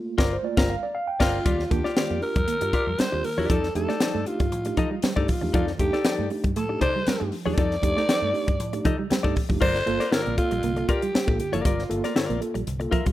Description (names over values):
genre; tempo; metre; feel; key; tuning
funk; 118 BPM; 4/4; straight; G minor; A4 = 440 Hz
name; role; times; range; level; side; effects
mellow tine electric piano; stabs; 0.0-13.0 s; G2 to G5; -31 LUFS; right 3 dB; medium stereo tremolo
clean electric guitar; accompaniment; 0.2-13.1 s; Eb4 to E5; -28 LUFS; left 4 dB; none
vintage muted fingered electric bass; bass; 0.2-12.9 s; F#1 to A2; -31 LUFS; equal; none
crisp fusion drum kit; drums; 0.2-13.1 s; crash cymbal, hi-hat, kick drum, snare drum; -25 LUFS; equal; none
breathy alto saxophone; melody; 1.2-12.0 s; F4 to D5; -27 LUFS; equal; none
semi-hollow electric guitar; riff; 1.5-13.1 s; F3 to Bb3; -32 LUFS; right 6 dB; vibrato effect
congas; percussion; 5.5-9.6 s; none; -38 LUFS; right 4 dB; none
room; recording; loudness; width
light reverb, small room ambience; rough home demo mix; -22 LUFS; side -14 dB against mid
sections
0.0-1.5 A section; 1.5-9.6 B section; 9.6-13.1 C section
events
band accent 0.0-1.5; tine electric piano solo 0.0-1.5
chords
0.0 Gm7; 1.5 Ebmaj9; 3.5 F13; 9.6 Gm7